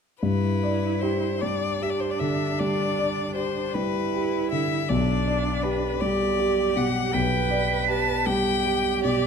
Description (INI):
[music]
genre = classical, slow romantic movement for piano quartet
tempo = 52 BPM (dotted quarters)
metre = 12/8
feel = rubato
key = G major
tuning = A4 = 441 Hz
[part]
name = clear violin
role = melody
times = 0.2-9.3 s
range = B4 to A5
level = -28 LUFS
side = left 7 dB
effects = none
[part]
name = rich cello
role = second line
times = 0.2-9.3 s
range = D4 to B4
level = -28 LUFS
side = right 10 dB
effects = none
[part]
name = dark concert grand piano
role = accompaniment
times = 0.2-9.3 s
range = B1 to D5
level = -25 LUFS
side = left 1 dB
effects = none
[sound]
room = moderate scoring stage reverb, RT60 1.9 s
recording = close, detailed microphones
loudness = -22 LUFS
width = side -6 dB against mid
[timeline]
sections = 0.2-9.3 A section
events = none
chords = 0.2 G; 4.9 G/B